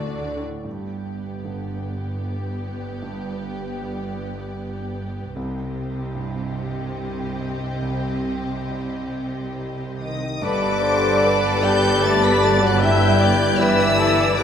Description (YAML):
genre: cinematic, emotional film score for orchestra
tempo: 68-78 BPM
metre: 3/4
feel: rubato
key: G major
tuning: A4 = 440 Hz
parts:
  - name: warm symphonic violin section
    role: second line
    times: 0.0-14.4 s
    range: F#4 to E5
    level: -28 LUFS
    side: left 3 dB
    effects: none
  - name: clear concert grand piano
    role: accompaniment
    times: 0.0-14.4 s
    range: C2 to D5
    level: -29 LUFS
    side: right 1 dB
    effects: none
  - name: rich symphonic viola section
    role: accompaniment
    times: 0.0-14.4 s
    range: A3 to E5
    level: -30 LUFS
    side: left 1 dB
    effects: none
  - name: rich studio double bass section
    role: bass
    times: 0.0-14.4 s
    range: G1 to D2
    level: -29 LUFS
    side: right 3 dB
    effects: none
  - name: rich symphonic cello section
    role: bass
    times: 0.0-14.4 s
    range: G2 to D3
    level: -29 LUFS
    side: right 2 dB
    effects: none
  - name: rich studio violin section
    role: melody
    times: 0.7-14.4 s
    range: D5 to B6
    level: -28 LUFS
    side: left 3 dB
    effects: none
  - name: mellow silver concert flute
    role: second line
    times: 10.0-14.4 s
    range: D5 to B5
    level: -25 LUFS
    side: equal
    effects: none
  - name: mellow French horn section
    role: sustained chords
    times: 10.0-14.4 s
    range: D3 to B3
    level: -24 LUFS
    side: left 3 dB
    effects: none
  - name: mellow oboe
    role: second line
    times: 10.4-14.4 s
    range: A4 to B4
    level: -26 LUFS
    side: equal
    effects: none
  - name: warm clarinet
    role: second line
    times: 10.4-14.4 s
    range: E4 to A4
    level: -26 LUFS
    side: left 3 dB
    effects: none
room: wet scoring stage reverb, RT60 2.1 s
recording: none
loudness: -19 LUFS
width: side -8 dB against mid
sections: 0.7-10.4 A section; 10.4-14.4 B section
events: none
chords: 0.0 D; 0.7 G; 5.4 Cm; 10.4 G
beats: | 0.65 1.46 2.25 | 3.03 3.81 4.59 | 5.36 6.15 6.97 | 7.83 8.70 9.57 | 10.43 11.23 12.03 | 12.82 13.60 14.38